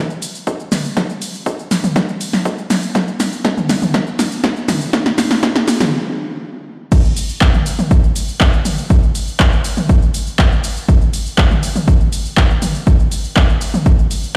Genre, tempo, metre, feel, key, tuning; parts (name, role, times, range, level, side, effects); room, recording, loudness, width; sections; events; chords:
techno; 121 BPM; 4/4; straight
punchy analog drum machine; drums; 0.1-14.3 s; crash cymbal, handclaps, hi-hat, shaker, snare drum, toms; -20 LUFS; equal; overdrive, sidechain pumping on perc, sidechain pumping on hats, sidechain pumping on toms, sidechain pumping on cymbals
electronic kick drum; drums; 0.5-14.0 s; -15 LUFS; equal; overdrive, high-pass filter on kick
moderate lush hall reverb, RT60 2.7 s; played on a big sound system in a bare room, stone room reverb; -16 LUFS; mono
0.0-6.9 A section; 6.9-14.4 B section
build-up 0.0-6.9; drum fill 0.0-5.9; stop 5.9-6.9; drop 6.9-14.4